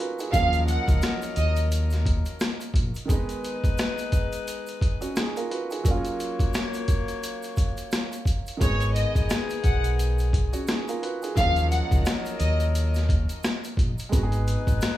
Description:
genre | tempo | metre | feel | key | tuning
hip hop, boom-bap hip-hop | 87 BPM | 4/4 | swing 59% on 16ths | Eb minor | A4 = 440 Hz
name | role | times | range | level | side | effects
dark baby grand piano | accompaniment | 0.0-15.0 s | Eb3 to Cb5 | -33 LUFS | right 4 dB | cassette tape, high-pass filter, low-pass filter
boom bap sampler-style drum kit | drums | 0.0-15.0 s | hi-hat, kick drum, rim click, snare drum | -26 LUFS | equal | none
egg shaker | percussion | 0.2-15.0 s | none | -45 LUFS | right 9 dB | none
warm symphonic violin section | melody | 0.3-1.5, 8.6-12.6 s | Db5 to Gb5 | -28 LUFS | equal | high-pass filter, low-pass filter, digital delay
mellow saxophone section | stabs | 0.3-15.0 s | Eb3 to Db5 | -34 LUFS | left 6 dB | high-pass filter, low-pass filter, digital delay
deep dub fingered electric bass | bass | 0.3-2.9, 8.6-14.8 s | Ab1 to Eb2 | -24 LUFS | equal | none
room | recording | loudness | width
little or no reverb | small room ambience | -22 LUFS | side -14 dB against mid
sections
0.0-15.0 A section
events
break 3.1-8.6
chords
0.3 Ebm7; 3.1 Abm; 5.8 Gbmaj13; 8.6 Abm; 11.4 Ebm7; 14.1 Abm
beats
| 0.33 1.02 1.71 2.40 | 3.09 3.78 4.47 5.16 | 5.85 6.54 7.23 7.92 | 8.61 9.30 9.99 10.68 | 11.37 12.06 12.75 13.44 | 14.12 14.81

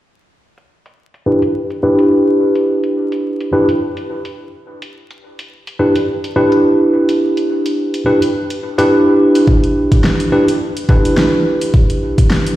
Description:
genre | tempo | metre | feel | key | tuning
glitch hop | 106 BPM | 4/4 | swing 57% on 16ths | E minor | A4 = 442 Hz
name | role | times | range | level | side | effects
pop drum kit | drums | 0.6-12.6 s | hi-hat, snare drum | -21 LUFS | equal | overdrive, low-pass filter on hats, low-pass filter on snare, low-pass filter on room
mellow tine electric piano | stabs | 1.3-12.6 s | D4 to B4 | -13 LUFS | equal | sidechain pumping, low-pass filter, dub echo
electronic kick drum | drums | 9.5-12.3 s | none | -11 LUFS | equal | overdrive
room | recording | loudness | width
wet lush hall reverb, RT60 2.0 s | played on a big sound system in a bare room, large studio reverb, vinyl crackle | -11 LUFS | side -14 dB against mid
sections
0.4-12.6 A section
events
filter sweep on drum 0.4-12.6; filter sweep on tine electric piano 0.4-12.6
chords
0.4 Em7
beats
| 0.42 0.98 1.55 2.12 | 2.68 3.25 3.81 4.38 | 4.95 5.51 6.08 6.64 | 7.21 7.78 8.34 8.91 | 9.47 10.04 10.61 11.17 | 11.74 12.30

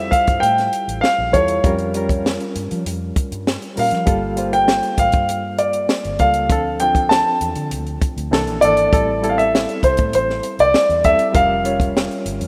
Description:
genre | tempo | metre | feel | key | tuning
lush 1970s-style soul | 99 BPM | 4/4 | straight | unclear | A4 = 441 Hz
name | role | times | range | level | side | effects
warm grand piano | melody | 0.0-12.5 s | C5 to A5 | -19 LUFS | equal | none
barky reed electric piano | accompaniment | 0.0-12.5 s | E3 to Db5 | -26 LUFS | equal | overdrive, fast tremolo
vintage muted fingered electric bass | bass | 0.0-12.5 s | F1 to F3 | -29 LUFS | equal | none
compact cocktail drum kit | drums | 0.1-12.5 s | hi-hat, kick drum, snare drum | -23 LUFS | equal | none
room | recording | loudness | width
moderate lush hall reverb, RT60 2.6 s | rough home demo mix | -18 LUFS | mono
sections
0.0-12.5 A section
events
none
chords
0.0 Fmaj9; 1.6 Bbm6/F; 4.1 Gm9; 6.5 Dm7; 8.3 C13; 8.9 Am7; 11.4 Bbm6/F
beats
0.43 1.03 | 1.64 2.25 2.85 3.46 | 4.07 4.68 5.28 5.89 | 6.50 7.11 7.71 8.32 | 8.93 9.53 10.14 10.75 | 11.35 11.96

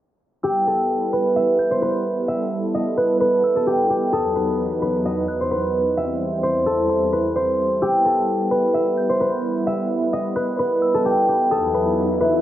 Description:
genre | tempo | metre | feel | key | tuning
hip hop | 130 BPM | 4/4 | half-time | E harmonic minor | A4 = 439 Hz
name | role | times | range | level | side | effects
concert harp | melody | 0.4-12.4 s | G4 to E5 | -19 LUFS | equal | cassette tape
delicate synth tine bell | second line | 0.4-11.9 s | C6 to G6 | -39 LUFS | left 1 dB | chorus, phaser, cassette tape, analog delay
warm analog pad | sustained chords | 0.4-12.4 s | E2 to C5 | -24 LUFS | right 1 dB | chorus, tremolo, cassette tape
swell | sound effects | 11.7-12.4 s | none | -22 LUFS | left 1 dB | none
room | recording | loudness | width
light reverb | home recording on cassette, low-pass filter | -18 LUFS | side -12 dB against mid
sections
0.4-12.4 A section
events
swell 11.7-12.4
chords
0.4 Em; 4.1 B/E; 6.0 C/E; 7.8 Em; 11.5 B/E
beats
| 0.43 0.90 1.36 1.82 | 2.28 2.74 3.20 3.67 | 4.13 4.59 5.05 5.51 | 5.97 6.43 6.90 7.36 | 7.82 8.28 8.74 9.20 | 9.67 10.13 10.59 11.05 | 11.51 11.97

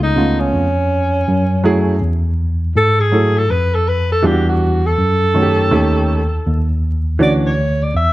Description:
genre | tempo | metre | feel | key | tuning
hip hop | 81 BPM | 4/4 | swing 64% on 16ths | unclear | A4 = 442 Hz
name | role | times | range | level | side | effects
breathy alto saxophone | melody | 0.0-8.1 s | Db4 to E5 | -18 LUFS | equal | none
dark grand piano | accompaniment | 0.0-7.5 s | Db3 to A4 | -17 LUFS | right 2 dB | none
tine electric piano | bass | 0.0-8.1 s | Db2 to Ab2 | -16 LUFS | equal | overdrive, medium stereo tremolo
room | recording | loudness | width
light reverb | dark, warm production, vinyl crackle | -13 LUFS | side -16 dB against mid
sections
0.0-8.1 A section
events
alto saxophone solo 0.0-8.1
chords
0.0 Db7b13; 1.3 Gbm9; 4.2 Em9; 5.7 Eb7#11; 7.2 Dmaj9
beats
0.54 | 1.28 2.02 2.76 3.50 | 4.24 4.98 5.72 6.46 | 7.20 7.94

